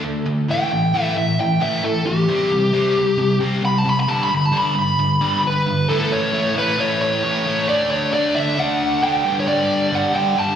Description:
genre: rock.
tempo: 134 BPM.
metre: 4/4.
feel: straight.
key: unclear.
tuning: A4 = 440 Hz.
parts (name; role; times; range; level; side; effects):
overdriven electric guitar; riff; 0.0-10.6 s; G2 to D4; -20 LUFS; left 1 dB; slapback echo.
dark smooth lead guitar; melody; 0.5-10.6 s; G4 to B5; -19 LUFS; equal; overdrive, slapback echo, tape echo.
room: light reverb, digital ambience.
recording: live gig heard through the venue's PA, recital hall reverb.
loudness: -16 LUFS.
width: side -8 dB against mid.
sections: 0.0-5.9 A section; 5.9-10.6 B section.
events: lead electric guitar solo 0.0-5.9.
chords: 0.5 A5; 2.3 C5; 4.1 G; 5.9 A; 7.7 D; 9.2 G5.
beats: 0.04 | 0.49 0.94 1.39 1.84 | 2.29 2.74 3.19 3.64 | 4.09 4.54 4.99 5.44 | 5.89 6.34 6.78 7.23 | 7.68 8.13 8.57 9.02 | 9.47 9.91 10.36.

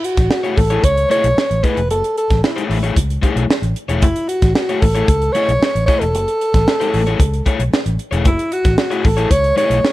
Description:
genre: funk.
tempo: 113 BPM.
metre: 4/4.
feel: straight.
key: F# dorian.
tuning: A4 = 440 Hz.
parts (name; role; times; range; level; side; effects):
breathy alto saxophone; melody; 0.0-9.9 s; E4 to C#5; -17 LUFS; equal; plate reverb.
tight funk drum kit; drums; 0.0-9.9 s; hi-hat, kick drum, snare drum; -17 LUFS; equal; none.
vintage muted fingered electric bass; bass; 0.2-9.9 s; E1 to C#2; -18 LUFS; equal; none.
crunchy overdriven guitar; accompaniment; 0.4-9.8 s; A3 to D#5; -22 LUFS; left 6 dB; plate reverb.
room: light reverb.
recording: none.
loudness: -13 LUFS.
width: side -16 dB against mid.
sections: 0.0-9.9 A section.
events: none.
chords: 0.0 F#m9 (rootless).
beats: 0.31 0.84 1.38 | 1.91 2.44 2.97 3.50 | 4.03 4.56 5.09 5.62 | 6.14 6.67 7.20 7.73 | 8.26 8.79 9.31 9.84.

